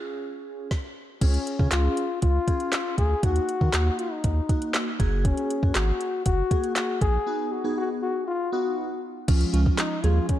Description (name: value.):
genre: dance-pop.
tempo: 119 BPM.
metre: 4/4.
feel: straight.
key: unclear.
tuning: A4 = 440 Hz.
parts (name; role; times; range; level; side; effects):
glassy digital keys; accompaniment; 0.0-10.4 s; E#3 to G#4; -31 LUFS; right 2 dB; chorus, sidechain pumping.
smooth R&B drum kit; drums; 0.7-10.4 s; crash cymbal, handclaps, hi-hat, kick drum, snare drum; -26 LUFS; equal; none.
dark trombone; melody; 1.2-10.4 s; C#4 to G#4; -28 LUFS; left 4 dB; ping-pong delay.
saturated sub bass; bass; 1.2-10.2 s; F#1 to D#3; -23 LUFS; equal; sidechain pumping.
room: light reverb.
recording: dark, warm production.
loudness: -22 LUFS.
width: side -12 dB against mid.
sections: 0.0-1.2 A section; 1.2-9.3 B section; 9.3-10.4 C section.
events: break 7.3-9.3.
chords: 0.0 C#; 3.2 D#m; 5.0 F#add9; 7.3 B; 9.3 C#.